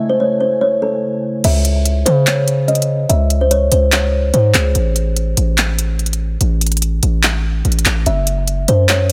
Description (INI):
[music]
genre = hip hop, trap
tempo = 145 BPM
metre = 4/4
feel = half-time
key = C# harmonic minor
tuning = A4 = 440 Hz
[part]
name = kalimba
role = melody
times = 0.0-4.7, 8.1-9.1 s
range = G#4 to E5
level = -20 LUFS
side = equal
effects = low-pass filter
[part]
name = mellow tine electric piano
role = accompaniment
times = 0.0-1.5 s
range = A3 to C#5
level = -26 LUFS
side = equal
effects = low-pass filter
[part]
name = glassy FM pad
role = sustained chords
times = 0.0-1.4 s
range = C#3 to G#5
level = -30 LUFS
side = equal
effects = ensemble chorus, built-in reverb, low-pass filter
[part]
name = distorted 808-style bass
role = bass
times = 1.4-9.1 s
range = F#1 to C#3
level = -17 LUFS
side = equal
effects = distortion
[part]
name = trap drum kit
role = drums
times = 1.4-9.1 s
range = crash cymbal, handclaps, hi-hat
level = -20 LUFS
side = equal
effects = none
[sound]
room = light reverb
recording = none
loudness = -15 LUFS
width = mono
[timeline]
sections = 0.0-1.4 A section; 1.4-9.1 B section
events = filter sweep 0.0-1.4; break 4.8-8.1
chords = 0.0 Amaj7; 1.4 C#m; 4.8 N.C.; 8.1 F#5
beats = 0.20 0.61 1.03 | 1.44 1.85 2.27 2.68 | 3.10 3.51 3.92 4.34 | 4.75 5.17 5.58 5.99 | 6.41 6.82 7.24 7.65 | 8.06 8.48 8.89